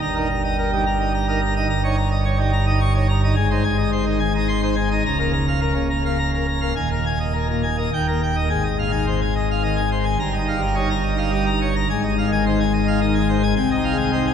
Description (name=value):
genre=classical, organ toccata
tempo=107 BPM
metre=3/4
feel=straight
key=Ab major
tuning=A4 = 440 Hz
part: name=pipe organ, plenum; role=solo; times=0.0-14.3 s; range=Db1 to Db6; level=-18 LUFS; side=equal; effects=none
room=wet church reverb, RT60 3.4 s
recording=minimal, uncompressed stereo recording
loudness=-18 LUFS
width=side -8 dB against mid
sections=0.0-8.5 A section; 8.5-14.3 B section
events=none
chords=0.0 Eb/G; 1.7 Eb7/G; 3.4 Ab; 5.1 Bbm/Db; 6.8 Ebsus4; 7.9 Eb; 8.5 Ab; 10.2 Eb7/G; 11.9 Ab; 13.6 Ab/C